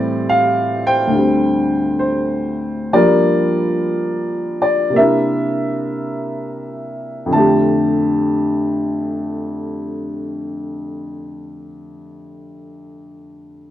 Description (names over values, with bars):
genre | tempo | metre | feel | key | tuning
solo jazz | 48-72 BPM | 4/4 | swing 68% on 8ths, rubato | F major | A4 = 442 Hz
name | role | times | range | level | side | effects
dark upright piano | solo | 0.0-13.7 s | D2 to A5 | -16 LUFS | equal | none
room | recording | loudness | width
moderate studio reverb, RT60 0.8 s | none | -15 LUFS | side -12 dB against mid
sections
0.0-7.3 A section; 7.3-12.3 B section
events
slowing down 0.0-7.3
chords
0.0 Am7; 1.1 D7sus4; 3.0 Gm7; 5.0 C9; 7.3 F69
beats
0.27 1.13 2.02 | 2.95 3.92 4.97 6.12 | 7.34 8.58 9.80 11.02